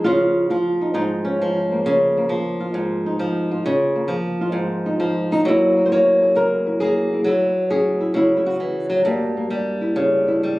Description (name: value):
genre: solo jazz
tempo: 133 BPM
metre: 4/4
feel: swing 68% on 8ths, rubato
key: unclear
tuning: A4 = 440 Hz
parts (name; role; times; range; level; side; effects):
- flamenco guitar; solo; 0.0-10.6 s; G2 to Db5; -17 LUFS; equal; none
room: moderate club reverb, RT60 0.8 s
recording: recorded on a phone in the room, club reverb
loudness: -17 LUFS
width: side -19 dB against mid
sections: 0.0-10.6 A section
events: none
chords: 0.0 Db69; 5.5 Gb9; 9.1 Gdim7